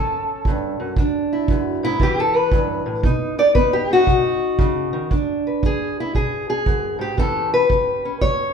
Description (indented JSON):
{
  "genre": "acoustic country blues, solo or duo",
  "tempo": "116 BPM",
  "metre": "4/4",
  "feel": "swing 66% on 8ths",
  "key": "unclear",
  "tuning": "A4 = 440 Hz",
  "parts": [
    { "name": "fingerpicked steel-string acoustic guitar", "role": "melody", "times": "0.0-8.5 s", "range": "E2 to D5", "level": "-18 LUFS", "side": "left 1 dB", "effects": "none" },
    { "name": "kick drum", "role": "drums", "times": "0.5-8.4 s", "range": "none", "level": "-22 LUFS", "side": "right 2 dB", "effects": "none" }
  ],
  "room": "moderate recital hall reverb, RT60 1.5 s",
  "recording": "recorded in a church or concert hall",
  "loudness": "-17 LUFS",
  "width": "side -6 dB against mid",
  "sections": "0.0-5.1 A section; 5.1-8.5 B section",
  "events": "steel-string acoustic guitar solo 0.0-5.1",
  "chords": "0.0 A7; 1.0 E7(no3); 2.0 A7; 3.0 B; 5.1 E7; 7.2 A7"
}